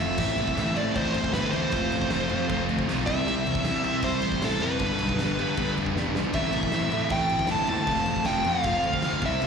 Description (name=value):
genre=punk rock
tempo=156 BPM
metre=4/4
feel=straight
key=A minor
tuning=A4 = 440 Hz
part: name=biting lead guitar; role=melody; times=0.0-9.5 s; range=A4 to A5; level=-28 LUFS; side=equal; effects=overdrive, slapback echo, tape echo
part: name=sludgy distorted guitar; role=riff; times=0.0-9.5 s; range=G2 to F4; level=-29 LUFS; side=left 10 dB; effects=overdrive
part: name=sludgy distorted guitar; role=riff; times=0.0-9.5 s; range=G2 to F4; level=-30 LUFS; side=right 12 dB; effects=overdrive
part: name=fuzz picked electric bass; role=bass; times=0.0-9.5 s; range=F1 to C3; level=-32 LUFS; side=equal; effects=overdrive
part: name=loose indie drum kit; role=drums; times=0.2-9.5 s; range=crash cymbal, kick drum, snare drum, splash cymbal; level=-34 LUFS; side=equal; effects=none
room=small room ambience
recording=live gig heard through the venue's PA, recital hall reverb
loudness=-23 LUFS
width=side -6 dB against mid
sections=0.2-9.5 A section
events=drum fill 0.0, 6.0-6.3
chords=0.2 Am; 1.7 F; 3.1 C; 4.8 G; 6.3 Am; 7.9 F